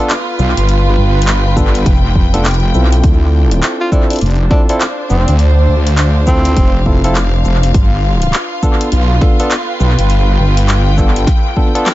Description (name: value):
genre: glitch hop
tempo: 102 BPM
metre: 4/4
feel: swing 62% on 16ths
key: unclear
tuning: A4 = 439 Hz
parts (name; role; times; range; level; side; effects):
- barky tine electric piano; stabs; 0.0-11.9 s; B3 to A4; -19 LUFS; equal; sidechain pumping, tape echo
- dark studio string section; texture; 0.0-11.9 s; D4 to G5; -19 LUFS; equal; sidechain pumping
- pop drum kit; drums; 0.1-11.9 s; handclaps, hi-hat, shaker, snare drum; -21 LUFS; equal; tape echo
- wobble bass; bass; 0.4-11.3 s; F1 to D2; -11 LUFS; equal; chorus, overdrive
- electronic kick drum; drums; 1.6-11.7 s; none; -12 LUFS; equal; none
- breathy tenor saxophone; melody; 3.8-6.9 s; C4 to F4; -21 LUFS; equal; tape echo
room: little or no reverb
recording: echo-heavy mix, nothing above 7.7 kHz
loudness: -10 LUFS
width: side -16 dB against mid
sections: 0.0-11.9 A section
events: none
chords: 0.0 G7; 3.0 Dm7; 7.7 G7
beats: 0.10 | 0.69 1.27 1.86 2.45 | 3.04 3.63 4.22 4.80 | 5.39 5.98 6.57 7.16 | 7.75 8.33 8.92 9.51 | 10.10 10.69 11.28 11.86